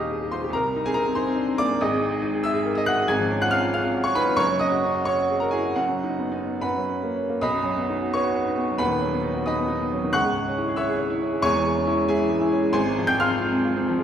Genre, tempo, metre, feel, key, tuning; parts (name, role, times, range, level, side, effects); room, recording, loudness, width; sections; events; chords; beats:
classical, romantic character piece for solo piano; 68-97 BPM (dotted quarters); 6/8; rubato; B major; A4 = 440 Hz
bright upright piano; solo; 0.0-14.0 s; Eb1 to G#6; -21 LUFS; equal
wet recital hall reverb, RT60 1.4 s; heard from further back in the room; -21 LUFS; side -9 dB against mid
0.0-7.4 A section; 7.4-14.0 B section
0.0 Cm/Eb; 0.5 Cm; 1.8 G#5; 3.1 C#7/G#; 4.4 F#; 5.8 B/F#; 6.6 F#; 7.4 B; 8.8 B/D#; 10.1 C#m; 11.5 C#m/E; 12.7 Fm/Ab
| 0.54 1.17 | 1.81 2.45 | 3.09 3.74 | 4.38 5.07 | 5.79 6.64 | 7.42 8.12 | 8.80 9.49 | 10.14 10.79 | 11.45 12.10 | 12.75 13.42